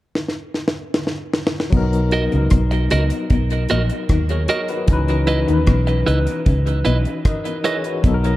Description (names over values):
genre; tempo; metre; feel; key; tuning
lovers rock reggae; 76 BPM; 4/4; straight; B major; A4 = 440 Hz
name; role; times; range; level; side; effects
deep reggae drum kit; drums; 0.2-8.4 s; crash cymbal, hi-hat, kick drum, rim click, snare drum; -20 LUFS; equal; none
barky tine electric piano; accompaniment; 1.7-8.4 s; E3 to D#5; -23 LUFS; left 2 dB; overdrive, fast tremolo, dub echo
electric guitar through a small old amp; riff; 1.7-8.3 s; A#2 to D#3; -27 LUFS; left 4 dB; dub echo
vintage muted fingered electric bass; bass; 1.7-8.4 s; A#1 to D#2; -18 LUFS; equal; none
clean electric guitar; stabs; 2.1-7.8 s; E4 to D#5; -24 LUFS; right 3 dB; spring reverb, dub echo
room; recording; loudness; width
light reverb; dark, warm production; -16 LUFS; side -16 dB against mid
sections
0.0-1.7 A section; 1.7-8.4 B section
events
drum fill 0.1-1.7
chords
0.0 N.C.; 1.7 Bmaj7; 4.9 C#m9